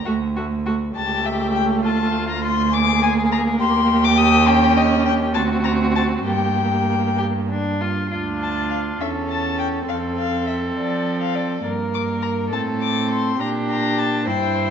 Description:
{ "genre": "quick classical-period movement for string quartet", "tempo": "68 BPM (dotted quarters)", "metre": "6/8", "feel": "rubato", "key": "G minor, D minor from 8.1 s", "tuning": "A4 = 440 Hz", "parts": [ { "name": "dark violin", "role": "melody", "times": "0.0-14.7 s", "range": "D5 to Eb6", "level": "-23 LUFS", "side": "left 9 dB", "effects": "none" }, { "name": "dark violin", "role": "second line", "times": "0.1-14.7 s", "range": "D4 to C5", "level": "-25 LUFS", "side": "left 1 dB", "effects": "none" }, { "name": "warm viola", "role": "accompaniment", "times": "0.1-14.7 s", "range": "A3 to E4", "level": "-24 LUFS", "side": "right 2 dB", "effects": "none" }, { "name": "rich cello", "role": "bass", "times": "0.1-14.7 s", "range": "C#2 to F3", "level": "-22 LUFS", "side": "right 4 dB", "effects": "none" } ], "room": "wet scoring stage reverb, RT60 1.8 s", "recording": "nothing above 7.8 kHz", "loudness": "-18 LUFS", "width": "side -7 dB against mid", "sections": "0.0-8.1 A section; 8.1-14.7 B section", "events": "none", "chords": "0.1 D5; 1.0 A7/C#; 1.9 Dm; 2.7 Bb7/D; 3.6 Eb; 4.5 Eb7; 5.4 D7; 6.3 Gm; 8.1 Dm; 9.0 A/E; 9.9 F6; 11.6 Gm; 12.5 Amadd11; 13.4 Gm/Bb", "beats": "0.07 | 0.97 1.86 | 2.74 3.61 | 4.47 5.35 | 6.26 7.19 | 8.11 9.01 | 9.89 10.76 | 11.65 12.52 | 13.39 14.26" }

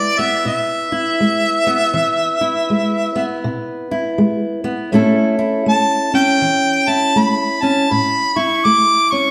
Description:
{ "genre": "acoustic country blues, solo or duo", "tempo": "81 BPM", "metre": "4/4", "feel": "swing 62% on 8ths", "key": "E major", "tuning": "A4 = 440 Hz", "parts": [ { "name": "warm harmonica", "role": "melody", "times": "0.0-9.3 s", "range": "D5 to D6", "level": "-18 LUFS", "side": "equal", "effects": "none" }, { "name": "fingerpicked steel-string acoustic guitar", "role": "accompaniment", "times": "0.0-9.3 s", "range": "A2 to A4", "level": "-20 LUFS", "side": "equal", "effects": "none" } ], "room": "wet stone room reverb, RT60 1.2 s", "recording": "band playing live in one room", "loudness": "-16 LUFS", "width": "mono", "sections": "0.0-9.3 A section", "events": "none", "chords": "0.0 E; 4.9 A", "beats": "0.46 1.20 | 1.95 2.69 3.44 4.18 | 4.92 5.67 6.41 7.16 | 7.90 8.65" }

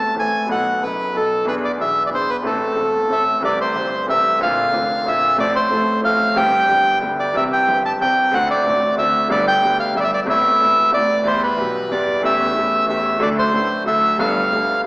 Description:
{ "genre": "tango", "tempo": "184 BPM", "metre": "3/4", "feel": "rubato", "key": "A harmonic minor, C major from 3.4 s", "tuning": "A4 = 438 Hz", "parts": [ { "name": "bandoneon", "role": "melody", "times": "0.0-14.8 s", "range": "A4 to A5", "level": "-16 LUFS", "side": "equal", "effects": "none" }, { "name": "clear concert grand piano", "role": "accompaniment", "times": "0.0-14.9 s", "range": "E1 to A4", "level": "-21 LUFS", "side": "equal", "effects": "none" }, { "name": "clear double bass", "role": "bass", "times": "0.0-14.8 s", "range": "E1 to E2", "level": "-32 LUFS", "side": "equal", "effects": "none" } ], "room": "wet recital hall reverb, RT60 1.5 s", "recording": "recorded in a church or concert hall, vinyl crackle, AM radio sound", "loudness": "-15 LUFS", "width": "side -24 dB against mid", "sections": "0.0-3.4 A section; 3.4-14.9 B section", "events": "none", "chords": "0.5 B7; 1.5 E7; 2.4 Am; 3.4 C6; 4.4 Bbadd9; 5.4 F/A; 6.4 C/G; 6.7 G; 7.3 C; 8.3 D7; 9.3 G; 10.3 Amadd9; 11.3 Em; 12.2 A7/E; 13.2 D; 14.2 Gadd9", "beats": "0.17 | 0.50 0.82 1.15 | 1.47 1.80 2.12 | 2.45 2.78 3.10 | 3.44 3.76 4.09 | 4.41 4.73 5.06 | 5.38 5.71 6.03 | 6.36 6.69 7.02 | 7.35 7.68 8.00 | 8.33 8.65 8.98 | 9.30 9.62 9.95 | 10.27 10.60 10.93 | 11.26 11.59 11.92 | 12.24 12.57 12.89 | 13.22 13.54 13.87 | 14.19 14.52 14.85" }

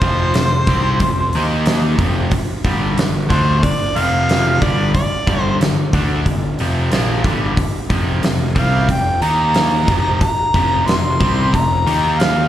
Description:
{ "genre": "blues rock power trio and southern rock", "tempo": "91 BPM", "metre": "4/4", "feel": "straight", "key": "unclear", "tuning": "A4 = 441 Hz", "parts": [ { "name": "warm harmonica", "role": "melody", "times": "0.0-12.5 s", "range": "C5 to C6", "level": "-19 LUFS", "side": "equal", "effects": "overdrive, slapback echo" }, { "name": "cranked stack guitar", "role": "riff", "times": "0.0-12.5 s", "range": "F2 to Eb4", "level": "-21 LUFS", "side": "equal", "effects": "overdrive, spring reverb, slapback echo" }, { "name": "fuzz picked electric bass", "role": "bass", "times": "0.0-12.5 s", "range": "F1 to Eb2", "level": "-19 LUFS", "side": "equal", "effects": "overdrive" }, { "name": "huge arena drum kit", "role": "drums", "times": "0.0-12.4 s", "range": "hi-hat, kick drum, snare drum", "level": "-19 LUFS", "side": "equal", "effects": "none" } ], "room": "studio reverb", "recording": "live gig heard through the venue's PA, club reverb", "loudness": "-14 LUFS", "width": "side -12 dB against mid", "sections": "0.0-12.5 A section", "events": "none", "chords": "0.0 F5; 1.3 Eb5; 2.0 F5; 2.7 G5; 4.0 F5; 4.6 Gm; 7.9 F5; 9.2 Eb5; 9.9 F5; 11.9 Eb5", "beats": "0.35 1.01 1.67 | 2.32 2.98 3.64 4.29 | 4.95 5.61 6.26 6.92 | 7.58 8.24 8.90 9.56 | 10.22 10.88 11.54 12.20" }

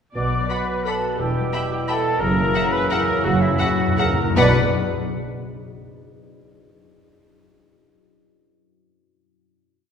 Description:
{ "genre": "classical, orchestral ballroom waltz", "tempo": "152-191 BPM", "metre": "3/4", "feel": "rubato", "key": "B minor", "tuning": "A4 = 440 Hz", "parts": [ { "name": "bright clarinet", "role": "second line", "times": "0.1-4.5 s", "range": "E4 to D5", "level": "-28 LUFS", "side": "left 2 dB", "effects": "none" }, { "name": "dark bassoon", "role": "accompaniment", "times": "0.1-4.5 s", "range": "B2 to C#3", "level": "-29 LUFS", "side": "right 3 dB", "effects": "none" }, { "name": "warm studio viola section", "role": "accompaniment", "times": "0.1-4.6 s", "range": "E4 to D5", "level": "-28 LUFS", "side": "right 1 dB", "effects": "none" }, { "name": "warm French horn section", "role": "sustained chords", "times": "0.1-4.5 s", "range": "E3 to D4", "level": "-30 LUFS", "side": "left 2 dB", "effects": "none" }, { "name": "concert harp", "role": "arpeggios", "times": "0.1-4.6 s", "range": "E2 to D5", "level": "-30 LUFS", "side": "left 5 dB", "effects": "none" }, { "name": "dark studio cello section", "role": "bass", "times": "0.1-4.6 s", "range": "E2 to B2", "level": "-28 LUFS", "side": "right 2 dB", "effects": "none" }, { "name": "timpani", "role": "percussion", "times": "0.1-4.5 s", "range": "F#2 to B2", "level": "-28 LUFS", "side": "left 1 dB", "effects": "none" }, { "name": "silver concert flute", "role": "second line", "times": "0.2-4.6 s", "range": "E5 to D6", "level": "-28 LUFS", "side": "left 2 dB", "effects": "none" }, { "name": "warm oboe", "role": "second line", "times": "0.2-4.5 s", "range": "D5 to F#5", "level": "-30 LUFS", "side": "right 4 dB", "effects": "none" }, { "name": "warm studio double bass section", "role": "bass", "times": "0.2-4.6 s", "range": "E1 to B1", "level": "-26 LUFS", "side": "right 2 dB", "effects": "none" }, { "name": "clear studio violin section", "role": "melody", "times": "0.5-4.6 s", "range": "F#5 to B5", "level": "-29 LUFS", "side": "left 4 dB", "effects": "none" }, { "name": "clear studio violin section", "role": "second line", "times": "0.5-4.6 s", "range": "B4 to G5", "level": "-30 LUFS", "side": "left 3 dB", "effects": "none" } ], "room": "wet concert hall reverb, RT60 1.9 s", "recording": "heard from further back in the room", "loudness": "-18 LUFS", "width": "side -7 dB against mid", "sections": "0.1-4.4 A section; 4.4-5.5 final chord", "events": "slowing down 1.7-4.4; timpani fill 2.2-4.4", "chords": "0.1 Bm; 1.2 Em; 2.2 F#7; 4.4 Bm", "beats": "| 0.15 0.50 0.86 | 1.19 1.53 1.88 | 2.21 2.55 2.90 | 3.24 3.59 3.98 | 4.36" }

